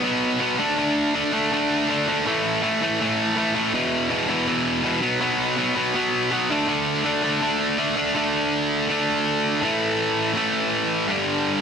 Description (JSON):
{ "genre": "punk", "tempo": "163 BPM", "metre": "4/4", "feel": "straight", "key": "unclear", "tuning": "A4 = 441 Hz", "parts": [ { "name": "distorted electric guitar", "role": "solo", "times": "0.0-11.6 s", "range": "E2 to D4", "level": "-20 LUFS", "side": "equal", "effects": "overdrive" } ], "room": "moderate studio reverb, RT60 0.9 s", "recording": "dense, heavily limited modern master", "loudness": "-20 LUFS", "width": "side -6 dB against mid", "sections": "0.0-8.2 A section; 8.2-11.6 B section", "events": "none", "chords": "0.0 B5; 0.6 D5; 2.2 A5; 3.7 E5; 5.0 B5; 6.5 D5; 9.6 A5; 11.1 G5" }